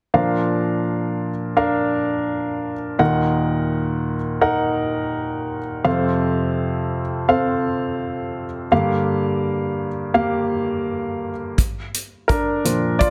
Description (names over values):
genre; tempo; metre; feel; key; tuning
piano-driven pop; 84 BPM; 4/4; swing 56% on 16ths; Bb major; A4 = 440 Hz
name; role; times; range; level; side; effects
clear baby grand piano; accompaniment; 0.1-13.1 s; Eb2 to Gb5; -21 LUFS; equal; none
natural country drum kit; drums; 11.6-13.1 s; hi-hat, kick drum; -23 LUFS; equal; none
room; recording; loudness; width
moderate large studio reverb, RT60 1.2 s, studio reverb; dense, heavily limited modern master; -21 LUFS; mono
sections
0.1-11.6 A section; 11.6-13.1 B section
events
grand piano solo 11.6-13.1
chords
0.1 Bb; 3.0 Ebm; 5.9 F; 8.7 Gm7; 11.6 Bb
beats
| 0.14 0.86 1.57 2.29 | 3.00 3.72 4.43 5.14 | 5.86 6.57 7.29 8.00 | 8.72 9.43 10.14 10.86 | 11.57 12.29 13.00